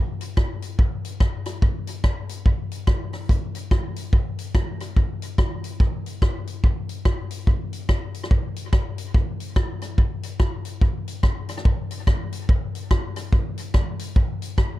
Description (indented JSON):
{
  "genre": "ska",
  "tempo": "144 BPM",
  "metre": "4/4",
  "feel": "swing 61% on 8ths",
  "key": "none",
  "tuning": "none",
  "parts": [
    { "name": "swinging big-band drum kit", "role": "drums", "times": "0.2-14.7 s", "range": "hi-hat, kick drum, rim click", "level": "-21 LUFS", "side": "equal", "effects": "none" }
  ],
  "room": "little or no reverb",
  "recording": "dark, warm production",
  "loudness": "-21 LUFS",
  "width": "side -16 dB against mid",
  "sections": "0.0-14.8 A section",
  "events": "none",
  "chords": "none",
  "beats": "0.37 0.79 1.21 | 1.62 2.04 2.46 2.88 | 3.29 3.71 4.13 4.55 | 4.96 5.38 5.80 6.22 | 6.63 7.05 7.47 7.89 | 8.31 8.72 9.14 9.56 | 9.98 10.40 10.81 11.23 | 11.65 12.07 12.49 12.90 | 13.32 13.74 14.16 14.58"
}